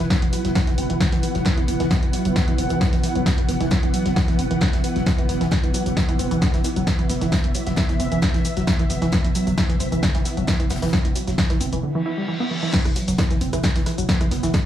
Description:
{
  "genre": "driving peak-time techno",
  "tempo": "133 BPM",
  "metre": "4/4",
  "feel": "straight",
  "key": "unclear",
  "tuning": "A4 = 443 Hz",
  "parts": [
    { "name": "tight sequenced synth", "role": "riff", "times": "0.0-14.6 s", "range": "D3 to E4", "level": "-25 LUFS", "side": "right 2 dB", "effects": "chorus, sidechain pumping, digital delay" },
    { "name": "growling 808-style bass", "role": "bass", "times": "0.0-14.5 s", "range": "E1", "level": "-28 LUFS", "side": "equal", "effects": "overdrive, sidechain pumping, low-pass filter" },
    { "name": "swarming drone", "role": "drone", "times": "0.0-14.7 s", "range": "E3 to B3", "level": "-30 LUFS", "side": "equal", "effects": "built-in reverb, sidechain pumping" },
    { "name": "modern studio drum kit", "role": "drums", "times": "0.0-14.7 s", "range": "hi-hat, snare drum", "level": "-39 LUFS", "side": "left 3 dB", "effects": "high-pass filter on hats, high-pass filter on snare, high-pass filter on room" },
    { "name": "punchy analog drum machine", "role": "drums", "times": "0.0-14.6 s", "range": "crash cymbal, hi-hat, rim click, shaker, snare drum", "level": "-26 LUFS", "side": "equal", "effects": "sidechain pumping on hats, sidechain pumping on perc, sidechain pumping on cymbals" },
    { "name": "granular cloud pad", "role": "texture", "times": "0.0-14.7 s", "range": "E4 to F#5", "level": "-30 LUFS", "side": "equal", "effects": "built-in reverb, sidechain pumping" },
    { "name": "electronic kick drum", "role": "drums", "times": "0.1-14.6 s", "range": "none", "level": "-22 LUFS", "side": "equal", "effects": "none" },
    { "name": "reverse cymbal", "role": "sound effects", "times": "12.0-12.7 s", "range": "none", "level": "-30 LUFS", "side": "left 1 dB", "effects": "none" }
  ],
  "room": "moderate stone room reverb, RT60 1.0 s",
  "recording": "studio ambience",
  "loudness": "-18 LUFS",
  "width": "side -11 dB against mid",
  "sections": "0.0-12.7 A section; 12.7-14.7 B section",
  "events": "break 11.8-12.7; reverse cymbal 12.0-12.7; drop 12.7-14.7",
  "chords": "0.0 E5"
}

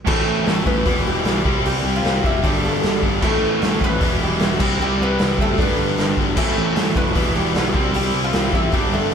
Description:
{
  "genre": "punk rock",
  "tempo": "152 BPM",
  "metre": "4/4",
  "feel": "straight",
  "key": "A minor",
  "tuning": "A4 = 440 Hz",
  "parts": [
    { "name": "distorted electric guitar", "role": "riff", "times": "0.0-9.1 s", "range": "E2 to C4", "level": "-24 LUFS", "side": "right 9 dB", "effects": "overdrive" },
    { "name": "oud", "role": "melody", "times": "0.1-9.1 s", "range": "G3 to F5", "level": "-24 LUFS", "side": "equal", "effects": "none" },
    { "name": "distorted electric guitar", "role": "riff", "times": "0.1-9.1 s", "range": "G2 to E4", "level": "-23 LUFS", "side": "left 9 dB", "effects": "overdrive" },
    { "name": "fuzz picked electric bass", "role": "bass", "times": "0.1-9.1 s", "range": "E1 to C2", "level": "-25 LUFS", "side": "equal", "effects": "overdrive" },
    { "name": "raw garage drum kit", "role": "drums", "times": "0.1-9.1 s", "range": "crash cymbal, hi-hat, kick drum, snare drum", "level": "-21 LUFS", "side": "equal", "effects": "none" }
  ],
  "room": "light reverb",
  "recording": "band playing live in one room",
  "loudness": "-16 LUFS",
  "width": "side -7 dB against mid",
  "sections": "0.1-9.1 A section",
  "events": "none",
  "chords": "0.1 Am; 0.9 Em; 1.4 C; 2.4 G; 3.2 Am; 4.0 Em; 4.6 C; 5.6 G; 6.4 Am; 7.2 Em; 7.7 C"
}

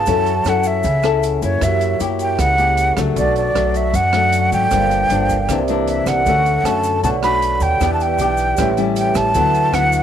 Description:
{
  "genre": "bossa nova",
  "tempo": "155 BPM",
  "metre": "4/4",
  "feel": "straight",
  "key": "unclear",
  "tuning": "A4 = 440 Hz",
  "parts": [
    { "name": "breathy mellow silver concert flute", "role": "melody", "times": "0.0-10.0 s", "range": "C#5 to B5", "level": "-18 LUFS", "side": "right 1 dB", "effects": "none" },
    { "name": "nylon-string guitar", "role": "accompaniment", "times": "0.0-10.0 s", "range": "F#2 to A4", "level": "-20 LUFS", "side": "left 10 dB", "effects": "none" },
    { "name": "vibraphone with soft mallets", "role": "accompaniment", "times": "0.0-10.0 s", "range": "G4 to C#6", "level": "-24 LUFS", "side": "right 11 dB", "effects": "none" },
    { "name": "upright bass", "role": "bass", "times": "0.0-10.0 s", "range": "G1 to F#2", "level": "-21 LUFS", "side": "right 1 dB", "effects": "none" },
    { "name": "open jazz drum kit", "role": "drums", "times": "0.1-10.0 s", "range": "hi-hat, kick drum, rim click", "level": "-28 LUFS", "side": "right 4 dB", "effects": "none" },
    { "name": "tube shaker", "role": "percussion", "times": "0.1-10.0 s", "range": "none", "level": "-36 LUFS", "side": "left 14 dB", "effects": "none" }
  ],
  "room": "light reverb, small room ambience",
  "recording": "1960s-style stereo with parts hard left and right",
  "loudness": "-14 LUFS",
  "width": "side -9 dB against mid",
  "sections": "0.0-10.0 A section",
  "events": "none",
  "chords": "0.1 F#m7; 1.6 F#7b9; 3.2 Bm7; 4.7 Gm7; 5.5 C9; 6.3 Dmaj7; 7.0 Bm7; 7.8 Em7; 8.6 A7; 9.4 D69"
}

